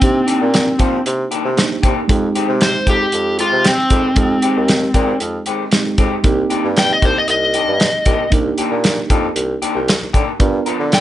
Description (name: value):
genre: straight-eighth soul blues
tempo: 116 BPM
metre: 4/4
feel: straight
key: C minor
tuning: A4 = 440 Hz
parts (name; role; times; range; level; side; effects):
- overdriven slide guitar; melody; 0.0-11.0 s; C4 to G5; -16 LUFS; left 1 dB; none
- mellow reed electric piano; accompaniment; 0.0-11.0 s; Ab3 to A#4; -22 LUFS; right 4 dB; none
- warm bassoon; bass; 0.0-11.0 s; C2 to F3; -21 LUFS; equal; none
- warm soul drum kit; drums; 0.0-11.0 s; hi-hat, kick drum, snare drum; -16 LUFS; equal; none
- electric guitar through a small old amp; stabs; 0.3-10.8 s; Eb3 to A#4; -22 LUFS; left 5 dB; tape echo
room: light reverb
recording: nothing above 10.9 kHz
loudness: -13 LUFS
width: side -13 dB against mid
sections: 0.0-11.0 A section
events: none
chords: 0.0 Cm9; 2.1 Fm9; 6.2 Cm9; 10.4 G7#9